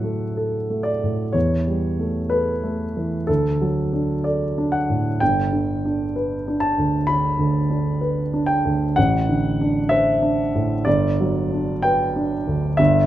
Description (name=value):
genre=classical, romantic nocturne for solo piano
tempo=62 BPM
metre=4/4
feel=rubato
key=D major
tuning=A4 = 440 Hz
part: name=warm grand piano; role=solo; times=0.0-13.1 s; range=G1 to B5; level=-18 LUFS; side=equal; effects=none
room=moderate recital hall reverb, RT60 1.6 s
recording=close, detailed microphones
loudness=-19 LUFS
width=side -13 dB against mid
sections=0.0-13.1 A section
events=none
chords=0.0 D; 1.4 A7/E; 3.3 D; 5.2 G; 9.0 D7/A; 10.9 Gmaj7